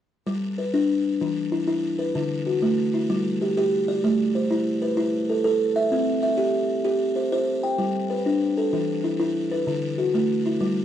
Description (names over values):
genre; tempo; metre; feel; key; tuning
southern african traditional; 128 BPM (dotted quarters); 12/8; straight; G major; A4 = 441 Hz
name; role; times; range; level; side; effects
buzzing kalimba; arpeggios; 0.3-10.8 s; D3 to G5; -21 LUFS; equal; none
room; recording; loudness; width
small room ambience; dry, close 1970s-style studio recording; -21 LUFS; side -10 dB against mid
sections
0.3-10.8 A section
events
none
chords
0.3 G; 1.2 E5; 2.2 D; 3.1 G5; 4.0 Am; 5.9 C; 7.8 G; 8.7 E5; 9.7 D